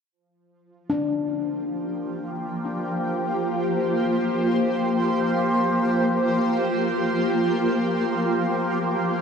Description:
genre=ambient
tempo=free time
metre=none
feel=none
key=unclear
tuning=A4 = 440 Hz
part: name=shimmering ambient pad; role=sustained chords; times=1.6-9.2 s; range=F3 to C5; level=-21 LUFS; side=equal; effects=chorus, built-in reverb, phaser
part: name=handpan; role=arpeggios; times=0.9-3.2 s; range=D4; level=-30 LUFS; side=left 4 dB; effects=ping-pong delay
room=wet cathedral reverb, RT60 4.7 s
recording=worn, warbling old tape, cassette tape, warbly pitch drift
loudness=-21 LUFS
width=side -6 dB against mid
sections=0.1-9.2 A section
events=none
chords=0.1 Fsus24

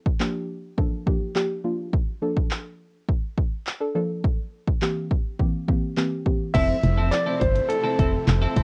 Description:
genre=dance-pop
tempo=104 BPM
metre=4/4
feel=straight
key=F major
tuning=A4 = 438 Hz
part: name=punchy analog drum machine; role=drums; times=0.1-8.6 s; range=crash cymbal, handclaps, hi-hat, kick drum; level=-26 LUFS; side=equal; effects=none
part: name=soft round pluck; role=accompaniment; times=0.2-7.7 s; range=E3 to A4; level=-29 LUFS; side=equal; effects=chorus, sidechain pumping, plate reverb
part: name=clear concert grand piano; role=melody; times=6.5-8.5 s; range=A4 to E5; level=-27 LUFS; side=equal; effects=cassette tape, plate reverb
part: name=supersaw chords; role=sustained chords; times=6.5-8.6 s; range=C3 to E4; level=-35 LUFS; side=equal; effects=sidechain pumping
part: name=twelve-string electric guitar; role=riff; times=6.5-8.6 s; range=C4 to A4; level=-31 LUFS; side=equal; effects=lush chorus
part: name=organ-like FM bass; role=bass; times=6.5-8.6 s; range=F1 to G1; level=-23 LUFS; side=equal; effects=sidechain pumping
room=light reverb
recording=home recording on cassette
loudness=-24 LUFS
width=mono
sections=0.0-6.5 A section; 6.5-8.6 B section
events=none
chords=0.0 Gm7; 1.9 Bbmaj7; 4.2 C7; 6.5 Fmaj7

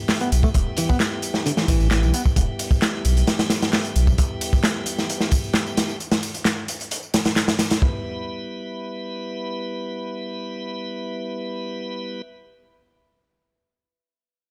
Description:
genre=breakbeat, breaks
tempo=132 BPM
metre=4/4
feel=straight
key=E minor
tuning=A4 = 440 Hz
part: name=tonewheel organ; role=sustained chords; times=0.0-12.2 s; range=G3 to B4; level=-33 LUFS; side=equal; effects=overdrive, slow rotary speaker, sidechain pumping
part: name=crunchy breakbeat drum kit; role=drums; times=0.1-7.9 s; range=hi-hat, kick drum, snare drum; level=-23 LUFS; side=equal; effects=none
part: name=house drum kit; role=drums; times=0.1-7.8 s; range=handclaps, ride cymbal, tambourine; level=-32 LUFS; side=equal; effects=none
part: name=clean electric guitar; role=riff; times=0.2-2.2 s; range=D3 to B3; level=-28 LUFS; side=equal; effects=tape echo
part: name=saturated sub bass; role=bass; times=0.3-4.1 s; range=E1 to B1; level=-22 LUFS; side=equal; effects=tube saturation
room=little or no reverb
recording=none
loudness=-23 LUFS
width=mono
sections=0.0-7.8 A section; 7.8-11.5 B section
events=drop 0.0-7.8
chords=0.0 Em

